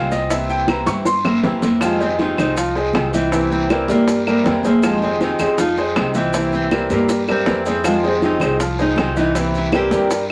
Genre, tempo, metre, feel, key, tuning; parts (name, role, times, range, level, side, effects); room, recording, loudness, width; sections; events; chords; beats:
latin, Cuban son and guajira; 159 BPM; 4/4; straight; F minor; A4 = 440 Hz
fingerpicked swing-style acoustic guitar; accompaniment; 0.0-10.3 s; C3 to F4; -26 LUFS; equal
clear grand piano; arpeggios; 0.0-10.2 s; E3 to Db6; -22 LUFS; equal
upright bass; bass; 0.0-10.3 s; C2 to G2; -29 LUFS; equal
bongos; percussion; 0.1-10.3 s; -26 LUFS; equal
congas; percussion; 0.1-10.3 s; -30 LUFS; equal
guiro; percussion; 0.1-10.3 s; -36 LUFS; equal
maracas; percussion; 0.1-10.3 s; -37 LUFS; equal
claves; percussion; 0.7-9.9 s; -31 LUFS; equal
nylon-string guitar; melody; 1.3-10.1 s; Ab3 to G4; -23 LUFS; equal
moderate studio reverb, RT60 0.6 s; -18 LUFS; mono
0.0-1.8 A section; 1.8-10.3 B section
grand piano solo 0.0-1.8; drum fill 0.9-1.8
0.3 C7; 1.8 Fm7; 3.3 C7; 4.8 Fm7; 6.3 C7; 7.8 Fm7; 9.4 C7
| 0.31 0.69 1.06 1.44 | 1.82 2.19 2.57 2.95 | 3.32 3.70 4.08 4.45 | 4.83 5.21 5.58 5.96 | 6.34 6.72 7.09 7.47 | 7.85 8.22 8.60 8.98 | 9.36 9.73 10.11